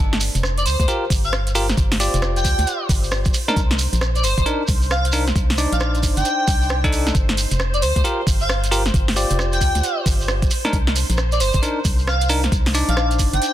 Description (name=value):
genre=UK garage, two-step garage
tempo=134 BPM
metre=4/4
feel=swing 63% on 16ths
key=G minor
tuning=A4 = 440 Hz
part: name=soft string machine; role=sustained chords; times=0.2-13.5 s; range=C5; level=-32 LUFS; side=equal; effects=phaser, ensemble chorus, sidechain pumping
part: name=organ-like FM bass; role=bass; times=0.0-13.4 s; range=F1 to D2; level=-21 LUFS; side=equal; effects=none
part: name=garage drum kit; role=drums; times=0.1-13.5 s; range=hi-hat, rim click, snare drum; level=-25 LUFS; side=right 1 dB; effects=overdrive
part: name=shekere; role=percussion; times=0.2-13.5 s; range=none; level=-29 LUFS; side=right 3 dB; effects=none
part: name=airy dreamy lead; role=melody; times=0.6-13.5 s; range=C5 to G5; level=-24 LUFS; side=equal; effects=chorus, digital delay
part: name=electronic kick drum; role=drums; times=0.8-13.3 s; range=none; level=-20 LUFS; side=equal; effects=overdrive
part: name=bell-like tine electric piano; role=stabs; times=0.9-13.5 s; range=D4 to D5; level=-25 LUFS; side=left 1 dB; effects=digital delay
room=light reverb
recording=dense, heavily limited modern master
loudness=-16 LUFS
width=side -12 dB against mid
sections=0.0-13.5 A section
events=none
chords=0.0 G7(no3); 3.3 Cm9; 7.1 G7(no3); 10.5 Cm9